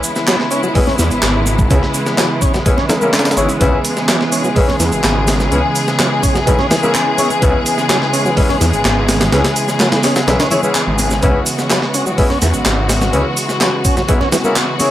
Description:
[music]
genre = breakbeat, breaks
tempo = 126 BPM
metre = 4/4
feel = straight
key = C# minor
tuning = A4 = 439 Hz
[part]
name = rich studio string section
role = sustained chords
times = 0.0-14.9 s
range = C#3 to G#4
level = -17 LUFS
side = equal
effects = sidechain pumping
[part]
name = breakbeat sampler-style drum kit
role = drums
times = 0.0-14.9 s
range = hi-hat, kick drum, snare drum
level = -17 LUFS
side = equal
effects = none
[part]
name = house drum kit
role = drums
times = 0.0-14.9 s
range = handclaps, hi-hat, shaker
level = -20 LUFS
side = right 1 dB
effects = none
[part]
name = tonewheel organ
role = riff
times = 0.3-14.4 s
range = C#3 to C#4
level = -21 LUFS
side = right 1 dB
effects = overdrive, slow rotary speaker, tape echo
[part]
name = congas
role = percussion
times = 0.6-14.9 s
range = none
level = -26 LUFS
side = left 2 dB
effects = none
[part]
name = mellow horn section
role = stabs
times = 0.8-14.9 s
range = A#3 to C#5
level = -20 LUFS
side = left 2 dB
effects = tape echo
[part]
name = phased detuned saw bass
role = bass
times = 1.0-14.2 s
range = G#1 to E2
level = -17 LUFS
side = equal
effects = phaser
[sound]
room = light reverb, digital ambience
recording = dry, gritty hardware recording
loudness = -12 LUFS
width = side -13 dB against mid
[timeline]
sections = 0.0-14.9 A section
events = none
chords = 0.0 C#m7

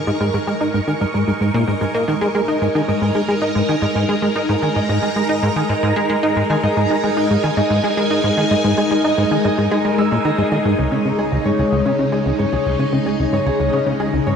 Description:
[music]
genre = ambient, sequencer-driven space music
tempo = 112 BPM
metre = 4/4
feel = straight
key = unclear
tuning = A4 = 440 Hz
[part]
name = phased string machine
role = sustained chords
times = 0.0-14.4 s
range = C#3 to C#6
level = -20 LUFS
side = left 1 dB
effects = ensemble chorus, phaser
[part]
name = Celtic harp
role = arpeggios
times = 0.0-14.4 s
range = C#4 to E6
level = -23 LUFS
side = moving between left 2 dB and right 4 dB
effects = auto-pan, tape echo
[part]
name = pulsing gated texture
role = texture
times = 0.0-10.8 s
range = A#4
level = -28 LUFS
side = right 2 dB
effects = chorus, built-in reverb
[part]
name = plucky analog bass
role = riff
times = 0.1-14.3 s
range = C#2 to D#4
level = -19 LUFS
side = equal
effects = analog chorus, tape echo
[sound]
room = wet huge ambient reverb, RT60 7.4 s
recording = none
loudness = -15 LUFS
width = side -7 dB against mid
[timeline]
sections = 0.0-10.8 A section; 10.8-14.4 B section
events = fade-in on harp 0.0-10.8; fade-in on string machine 0.0-10.8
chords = 0.0 G#sus2; 10.8 C#sus2

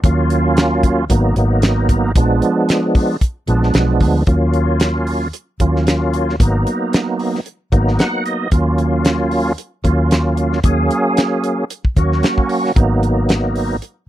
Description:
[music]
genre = straight-eighth soul blues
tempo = 113 BPM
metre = 4/4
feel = swing 55% on 16ths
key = Eb minor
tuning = A4 = 440 Hz
[part]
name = bright tonewheel organ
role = accompaniment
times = 0.0-13.8 s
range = F3 to Gb5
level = -17 LUFS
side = right 1 dB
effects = chorus vibrato, slow rotary speaker
[part]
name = vintage muted fingered electric bass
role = bass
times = 0.0-13.8 s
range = Ab1 to Eb2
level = -17 LUFS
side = equal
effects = none
[part]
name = damped 70s drum kit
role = drums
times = 0.0-14.0 s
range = hi-hat, kick drum, snare drum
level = -16 LUFS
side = equal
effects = none
[sound]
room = light reverb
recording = dry, close 1970s-style studio recording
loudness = -14 LUFS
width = side -13 dB against mid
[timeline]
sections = 0.0-4.3 A section; 4.3-14.1 B section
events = tonewheel organ fill 7.7-8.5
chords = 0.0 Ebm9; 1.1 Abm9; 2.2 Bb7b9; 4.3 Ebm9; 6.4 Abm9; 8.5 Ebm9; 12.8 Abm9

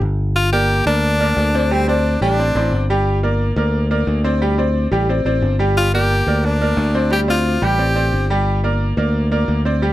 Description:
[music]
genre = latin, salsa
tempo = 178 BPM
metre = 4/4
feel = straight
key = G minor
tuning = A4 = 442 Hz
[part]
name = fingered electric bass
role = bass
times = 0.0-9.9 s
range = G1 to D2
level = -18 LUFS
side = equal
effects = none
[part]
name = edgy tenor saxophone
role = melody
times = 0.4-2.9, 5.8-8.3 s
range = C4 to G4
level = -19 LUFS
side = left 1 dB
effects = none
[part]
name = bright concert grand piano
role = accompaniment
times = 0.5-9.9 s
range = G3 to G5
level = -20 LUFS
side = equal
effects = none
[sound]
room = little or no reverb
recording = close, detailed microphones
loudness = -15 LUFS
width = side -14 dB against mid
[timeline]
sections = 0.4-9.9 A section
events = none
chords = 0.4 Gm; 1.7 D7sus4; 3.1 Gm; 4.4 D7sus4; 5.8 Gm; 7.1 D7sus4; 8.5 Gm

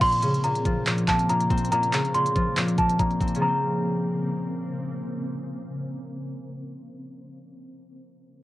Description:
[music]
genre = hip hop, trap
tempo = 141 BPM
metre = 4/4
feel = half-time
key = Bb minor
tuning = A4 = 437 Hz
[part]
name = worn celesta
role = melody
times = 0.0-4.7 s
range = A5 to C6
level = -25 LUFS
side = equal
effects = low-pass filter, cassette tape
[part]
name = concert harp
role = accompaniment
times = 0.0-7.4 s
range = Bb2 to C4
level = -26 LUFS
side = left 1 dB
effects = low-pass filter
[part]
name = granular cloud pad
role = sustained chords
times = 0.0-7.4 s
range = Db3 to C4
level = -35 LUFS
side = equal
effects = built-in reverb, low-pass filter
[part]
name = trap drum kit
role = drums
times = 0.0-3.4 s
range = crash cymbal, handclaps, hi-hat, kick drum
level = -27 LUFS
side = equal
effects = cassette tape
[sound]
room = light reverb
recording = home recording on cassette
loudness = -22 LUFS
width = side -16 dB against mid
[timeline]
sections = 0.0-3.4 A section; 3.4-6.8 B section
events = filter sweep 0.0-3.4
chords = 0.0 Bbmadd9

